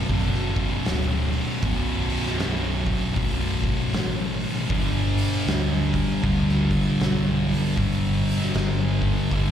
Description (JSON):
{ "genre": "stoner and doom metal", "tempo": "78 BPM", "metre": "4/4", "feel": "swing 61% on 8ths", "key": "B minor", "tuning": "A4 = 436 Hz", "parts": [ { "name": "thick fuzz guitar", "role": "riff", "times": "0.0-9.5 s", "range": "B1 to G3", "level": "-24 LUFS", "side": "equal", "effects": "distortion" }, { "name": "fingered electric bass", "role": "bass", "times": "0.1-9.5 s", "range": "B0 to D2", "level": "-26 LUFS", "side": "equal", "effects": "overdrive" }, { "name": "oversized low-tuned drum kit", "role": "drums", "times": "0.1-9.5 s", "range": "hi-hat, kick drum, snare drum", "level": "-27 LUFS", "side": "equal", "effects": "none" } ], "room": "little or no reverb", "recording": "live gig heard through the venue's PA, recital hall reverb", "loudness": "-21 LUFS", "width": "side -9 dB against mid", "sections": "0.0-9.5 A section", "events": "none", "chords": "0.0 B5; 4.7 G5" }